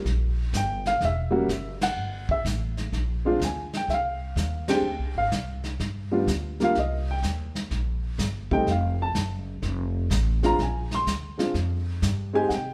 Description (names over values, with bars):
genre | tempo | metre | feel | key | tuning
jazz piano trio | 125 BPM | 4/4 | swing 67% on 8ths | Bb mixolydian | A4 = 440 Hz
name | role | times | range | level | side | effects
dark upright piano | melody | 0.0-12.7 s | G3 to C6 | -28 LUFS | equal | none
upright bass | bass | 0.0-12.7 s | E1 to C3 | -30 LUFS | equal | none
vintage brush drum kit | drums | 0.1-12.7 s | brushed snare drum, hi-hat, kick drum, ride cymbal, snare drum | -35 LUFS | equal | none
room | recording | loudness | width
moderate large studio reverb, RT60 1.0 s | band playing live in one room | -26 LUFS | mono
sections
0.0-12.7 A section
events
band accent 1.7, 4.6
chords
0.0 Eb (rootless); 1.0 Em; 2.9 Bb9; 4.8 Abmaj7#11; 5.8 G7(no3); 6.8 Cm7; 8.7 F; 10.6 Bb9